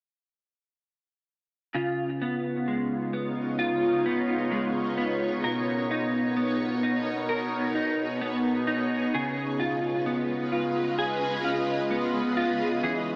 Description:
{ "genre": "dream pop", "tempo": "65 BPM", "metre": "4/4", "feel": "straight", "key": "Db mixolydian", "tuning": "A4 = 440 Hz", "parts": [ { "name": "shimmering ambient pad", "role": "sustained chords", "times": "2.6-13.2 s", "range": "E2 to Eb5", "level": "-32 LUFS", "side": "equal", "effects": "chorus, built-in reverb, phaser, cassette tape" }, { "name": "clean electric guitar", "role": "arpeggios", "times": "1.7-13.2 s", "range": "Cb3 to Bb4", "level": "-29 LUFS", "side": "equal", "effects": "ensemble chorus, cassette tape, tape echo" } ], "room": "wet studio reverb, RT60 0.5 s", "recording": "home recording on cassette, AM radio sound", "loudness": "-28 LUFS", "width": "mono", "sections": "1.8-13.2 A section", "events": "none", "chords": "1.8 Db7; 5.4 Cbmaj7; 9.1 Db7" }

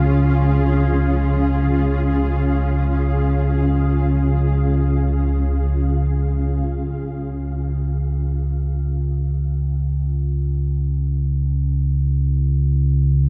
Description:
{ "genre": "dark ambient drone", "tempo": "free time", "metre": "none", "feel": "none", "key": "C# major", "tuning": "A4 = 440 Hz", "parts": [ { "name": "granular cloud pad", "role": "sustained chords", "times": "0.0-6.7 s", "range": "C#4 to E#5", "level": "-27 LUFS", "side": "equal", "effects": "built-in reverb" }, { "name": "deep rumbling drone", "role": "drone", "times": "0.0-13.3 s", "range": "C#2 to C#3", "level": "-20 LUFS", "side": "equal", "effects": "built-in reverb" }, { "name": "quartz singing bowl", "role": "texture", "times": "0.0-13.3 s", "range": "E#4 to G#4", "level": "-46 LUFS", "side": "equal", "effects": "none" } ], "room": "moderate huge ambient reverb, RT60 8.8 s", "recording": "none", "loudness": "-20 LUFS", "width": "mono", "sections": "0.0-6.6 A section; 6.6-13.3 B section", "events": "fade-in on singing bowl 6.6-13.3", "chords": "0.0 C#" }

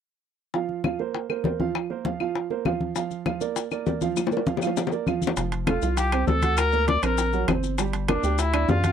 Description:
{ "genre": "Afro-Cuban jazz", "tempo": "199 BPM", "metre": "4/4", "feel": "straight", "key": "unclear", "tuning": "A4 = 439 Hz", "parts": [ { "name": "warm upright piano", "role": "accompaniment", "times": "0.5-8.9 s", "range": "F3 to G5", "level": "-28 LUFS", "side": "right 11 dB", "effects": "none" }, { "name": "bongos", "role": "percussion", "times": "0.5-8.9 s", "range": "none", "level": "-29 LUFS", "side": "left 10 dB", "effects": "none" }, { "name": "congas", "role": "percussion", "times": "0.5-8.9 s", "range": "none", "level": "-29 LUFS", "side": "left 3 dB", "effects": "none" }, { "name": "claves", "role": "percussion", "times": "0.8-8.7 s", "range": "none", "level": "-36 LUFS", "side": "left 19 dB", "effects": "none" }, { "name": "maracas", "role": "percussion", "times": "3.0-8.9 s", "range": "none", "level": "-38 LUFS", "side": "left 19 dB", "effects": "none" }, { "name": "rubbery square bass", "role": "bass", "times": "5.4-8.9 s", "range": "F1 to Gb2", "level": "-25 LUFS", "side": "left 1 dB", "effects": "none" }, { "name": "timbales", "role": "percussion", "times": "5.4-8.9 s", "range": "none", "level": "-32 LUFS", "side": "right 6 dB", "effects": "none" }, { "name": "warm trumpet", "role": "melody", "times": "5.7-8.9 s", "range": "D4 to D5", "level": "-25 LUFS", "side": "left 3 dB", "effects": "none" } ], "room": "light reverb", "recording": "dry, close 1970s-style studio recording", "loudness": "-22 LUFS", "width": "side -8 dB against mid", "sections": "0.5-5.4 A section; 5.4-8.9 B section", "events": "drum fill 4.2-5.4", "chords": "0.5 C7sus4; 3.0 Bb/F; 5.4 F69; 6.6 Daug7; 7.8 Gm7" }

